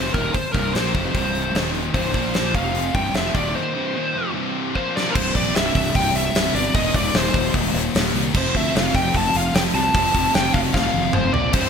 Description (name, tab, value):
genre	hard rock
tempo	150 BPM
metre	4/4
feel	straight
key	unclear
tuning	A4 = 440 Hz
part	biting lead guitar	melody	0.0-11.7 s	Bb4 to A5	-23 LUFS	left 1 dB	overdrive, digital delay
part	crunchy overdriven guitar	riff	0.0-11.7 s	C2 to Bb3	-28 LUFS	right 12 dB	analog chorus
part	overdriven electric guitar	riff	0.0-5.2, 11.5-11.7 s	C2 to Bb3	-31 LUFS	equal	none
part	scooped high-gain guitar	riff	0.0-11.7 s	C2 to Bb3	-26 LUFS	left 11 dB	distortion
part	fuzz fingered electric bass	bass	0.0-11.7 s	C1 to D2	-26 LUFS	equal	overdrive
part	gated 80s drum kit	drums	0.1-11.6 s	crash cymbal, hi-hat, kick drum, snare drum, toms	-22 LUFS	equal	none
room	moderate plate reverb, RT60 2.1 s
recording	bright 1980s-style digital production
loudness	-18 LUFS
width	side -7 dB against mid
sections	0.0-5.2 A section; 5.2-11.7 B section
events	break 3.6-5.2; drum fill 4.8-5.2, 10.7-11.5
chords	0.0 C5; 1.6 Eb5; 2.0 C5; 2.2 Bb5; 2.6 F5; 3.0 C5; 4.8 Bb5; 5.2 C; 6.7 Eb5; 8.3 F